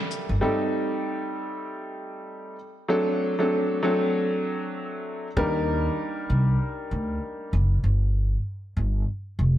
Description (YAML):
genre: hip hop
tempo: 97 BPM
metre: 4/4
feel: swing 59% on 16ths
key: unclear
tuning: A4 = 438 Hz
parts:
  - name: warm upright piano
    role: accompaniment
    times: 0.0-7.5 s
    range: F#3 to Bb4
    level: -26 LUFS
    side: equal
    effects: high-pass filter, low-pass filter
  - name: upright bass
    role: bass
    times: 0.3-0.4, 5.4-9.6 s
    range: F1 to Eb2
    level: -23 LUFS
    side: equal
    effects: none
room: moderate lush hall reverb, RT60 1.9 s, digital ambience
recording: dreamy mix soaked in reverb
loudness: -23 LUFS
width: side -13 dB against mid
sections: 0.4-9.6 A section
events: none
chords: 0.4 Am7b5; 2.9 D7; 5.4 Ebmaj7; 7.8 N.C.